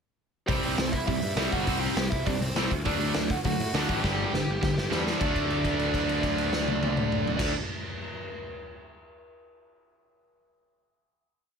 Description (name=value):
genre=punk rock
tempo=203 BPM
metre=4/4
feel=straight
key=D mixolydian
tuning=A4 = 439 Hz
part: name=bluesy overdriven lead guitar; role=melody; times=0.5-7.5 s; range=C4 to G5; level=-32 LUFS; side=right 2 dB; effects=distortion
part: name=distorted electric guitar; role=riff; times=0.5-7.5 s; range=G2 to D4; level=-32 LUFS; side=left 14 dB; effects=distortion
part: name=tight distorted guitar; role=riff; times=0.5-7.5 s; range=G2 to D4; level=-31 LUFS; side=right 12 dB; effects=distortion
part: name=fuzz picked electric bass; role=bass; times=0.5-7.5 s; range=G1 to A2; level=-32 LUFS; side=equal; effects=overdrive
part: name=raw garage drum kit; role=drums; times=0.5-7.5 s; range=crash cymbal, hi-hat, kick drum, snare drum, toms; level=-30 LUFS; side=equal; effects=none
room=light reverb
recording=none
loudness=-25 LUFS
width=side -6 dB against mid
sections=0.5-5.2 verse; 5.2-7.6 final chord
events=drum fill 4.0-5.2; held note 5.2-7.4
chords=0.5 C; 2.7 D; 4.0 G5; 5.2 D